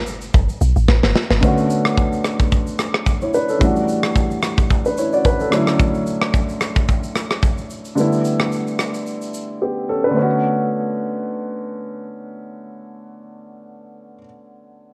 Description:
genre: amapiano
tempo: 110 BPM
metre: 4/4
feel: swing 55% on 16ths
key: B minor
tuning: A4 = 440 Hz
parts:
  - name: deep log drum bass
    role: bass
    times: 0.0-1.4 s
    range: G1 to B1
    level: -19 LUFS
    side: equal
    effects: none
  - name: tight metal drum kit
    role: drums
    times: 0.1-9.5 s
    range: kick drum, rim click, shaker, snare drum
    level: -21 LUFS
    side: equal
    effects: none
  - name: dark baby grand piano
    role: accompaniment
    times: 1.4-14.9 s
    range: D3 to D5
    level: -22 LUFS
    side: equal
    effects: none
room: light reverb, studio reverb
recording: worn, warbling old tape, cassette tape, warbly pitch drift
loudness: -19 LUFS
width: mono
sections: 0.0-1.4 A section; 1.4-10.2 B section; 10.2-14.5 C section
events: drop 0.0-1.4; drum fill 0.9-1.4; silent gap 9.6-10.2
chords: 0.0 Gsus2; 1.4 Bm9; 3.6 Em11; 5.5 Dmaj9; 8.0 G69; 10.2 Bm9

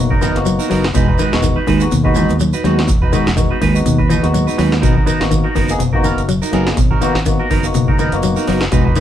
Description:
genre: afrobeat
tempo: 124 BPM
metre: 4/4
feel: swing 56% on 16ths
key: G# minor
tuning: A4 = 440 Hz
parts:
  - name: barky tine electric piano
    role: accompaniment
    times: 0.0-8.6 s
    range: G#3 to G#4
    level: -21 LUFS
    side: left 2 dB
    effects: none
  - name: semi-hollow electric guitar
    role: arpeggios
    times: 0.0-9.0 s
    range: B2 to F#3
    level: -19 LUFS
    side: left 4 dB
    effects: none
  - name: modern bright fingered electric bass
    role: bass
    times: 0.0-8.9 s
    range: E1 to D#2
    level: -18 LUFS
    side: equal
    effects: none
  - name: clean electric guitar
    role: stabs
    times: 0.1-9.0 s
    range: G#3 to B4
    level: -20 LUFS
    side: right 4 dB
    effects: phaser
  - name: electro analog drum machine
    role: drums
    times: 0.1-9.0 s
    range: hi-hat, kick drum, snare drum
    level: -18 LUFS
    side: equal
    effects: none
  - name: shekere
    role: percussion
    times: 0.2-9.0 s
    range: none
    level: -26 LUFS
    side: right 3 dB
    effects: none
room: wet studio reverb, RT60 0.6 s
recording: band playing live in one room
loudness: -12 LUFS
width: side -11 dB against mid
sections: 0.0-9.0 A section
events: none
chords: 0.0 G#m9 (rootless); 0.9 Emaj9; 4.8 G#m9

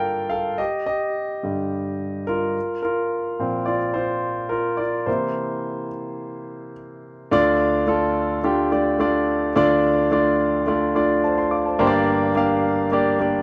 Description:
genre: pop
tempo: 107 BPM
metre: 4/4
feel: straight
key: unclear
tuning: A4 = 439 Hz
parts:
  - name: warm concert grand piano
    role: solo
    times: 0.0-13.4 s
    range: G1 to D6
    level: -22 LUFS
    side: equal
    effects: none
room: moderate large studio reverb, RT60 1.1 s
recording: band playing live in one room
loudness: -22 LUFS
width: mono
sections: 0.0-7.3 A section; 7.3-13.4 B section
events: grand piano solo 0.0-7.3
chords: 0.0 Gmadd9; 0.6 Ebmaj7/G; 2.6 Bbsus2; 5.1 C7; 7.3 Dm; 11.8 Gm

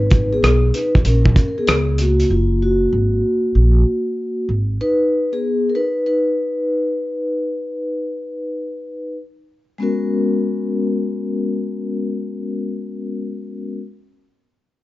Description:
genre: hip hop, jazz-hop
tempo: 96 BPM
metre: 4/4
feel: swing 66% on 16ths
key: G# minor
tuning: A4 = 439 Hz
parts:
  - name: vibraphone with soft mallets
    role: accompaniment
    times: 0.0-13.8 s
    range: G#3 to B4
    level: -19 LUFS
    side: left 1 dB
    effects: none
  - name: upright bass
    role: bass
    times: 0.0-4.8 s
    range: F#1 to C#2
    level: -16 LUFS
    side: equal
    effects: none
  - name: cloth-damped thuddy drum kit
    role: drums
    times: 0.1-2.3 s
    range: hi-hat, kick drum, rim click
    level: -16 LUFS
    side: equal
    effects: none
room: light reverb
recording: dark, warm production, nothing above 7.6 kHz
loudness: -16 LUFS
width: side -17 dB against mid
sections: 0.0-9.8 A section; 9.8-12.3 B section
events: vibraphone solo 0.0-9.8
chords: 0.0 G#madd9; 1.7 C#5; 2.3 F#; 4.5 G#m; 7.3 N.C.; 9.8 G#m11

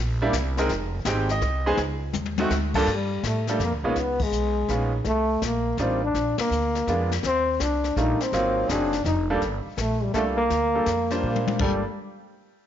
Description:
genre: jazz, small-group swing and bop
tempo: 165 BPM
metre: 3/4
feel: swing 65% on 8ths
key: G minor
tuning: A4 = 439 Hz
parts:
  - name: upright bass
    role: bass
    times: 0.0-11.8 s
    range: F1 to Bb2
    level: -28 LUFS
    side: right 1 dB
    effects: none
  - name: clear baby grand piano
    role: accompaniment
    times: 0.2-11.8 s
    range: G2 to G5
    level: -26 LUFS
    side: right 2 dB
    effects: none
  - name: jazz brush drum kit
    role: drums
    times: 0.3-12.0 s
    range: brushed snare drum, crash cymbal, hi-hat, kick drum, ride cymbal, snare drum, toms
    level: -31 LUFS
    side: left 5 dB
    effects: none
  - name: breathy trombone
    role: melody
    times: 2.9-11.8 s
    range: G3 to Eb4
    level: -25 LUFS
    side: left 2 dB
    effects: none
room: moderate echo chamber reverb, RT60 1.4 s, studio ambience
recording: 1960s-style stereo, nothing above 7.5 kHz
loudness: -22 LUFS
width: side -10 dB against mid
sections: 0.0-2.9 A section; 2.9-11.6 B section; 11.6-12.7 C section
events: drum fill 2.1-2.5, 11.2-11.6; band accent 4.1, 6.3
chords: 0.0 C7; 0.7 Fm9; 1.8 Dbsus2; 2.5 D5; 2.9 Gm9; 4.0 C#9; 5.1 Cm11; 6.1 Bb7b9; 7.2 Ebmaj9#11; 8.3 Ab13; 9.4 Gm9

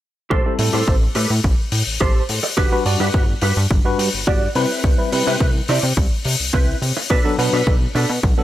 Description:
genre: nu-disco, nu disco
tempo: 106 BPM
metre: 4/4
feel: straight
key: A dorian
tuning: A4 = 440 Hz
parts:
  - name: mellow electric guitar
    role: riff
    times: 0.3-8.3 s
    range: C4 to D5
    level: -23 LUFS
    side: right 2 dB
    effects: ensemble chorus, analog delay
  - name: chorused synth bass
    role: bass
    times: 0.3-8.4 s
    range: G1 to C3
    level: -21 LUFS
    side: equal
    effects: tube saturation
  - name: electronic kick drum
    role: drums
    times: 0.3-8.4 s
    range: none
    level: -18 LUFS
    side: equal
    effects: studio reverb
  - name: tine electric piano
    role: accompaniment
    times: 0.5-8.4 s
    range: F#3 to D5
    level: -23 LUFS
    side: left 1 dB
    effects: overdrive, medium stereo tremolo, low-pass filter, analog delay
  - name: hi-hat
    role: drums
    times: 0.6-8.1 s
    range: none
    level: -24 LUFS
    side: left 5 dB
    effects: studio reverb
room: small room ambience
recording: none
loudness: -16 LUFS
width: side -13 dB against mid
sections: 0.3-8.4 A section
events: filter sweep on tine electric piano 0.3-8.4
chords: 0.3 Am7; 2.6 Gmaj7; 4.6 Cmaj7; 7.1 Bm7

